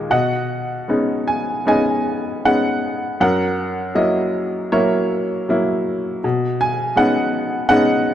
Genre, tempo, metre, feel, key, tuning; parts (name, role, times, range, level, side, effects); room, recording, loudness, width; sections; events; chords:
classical, lyrical solo piano; 76-82 BPM; 4/4; rubato; B major; A4 = 440 Hz
bright upright piano; solo; 0.0-8.1 s; D#2 to G#5; -16 LUFS; equal
moderate concert hall reverb, RT60 2.1 s; dark, warm production; -17 LUFS; side -10 dB against mid
0.1-8.1 A section
0.1 B69; 3.2 F#7; 6.2 B69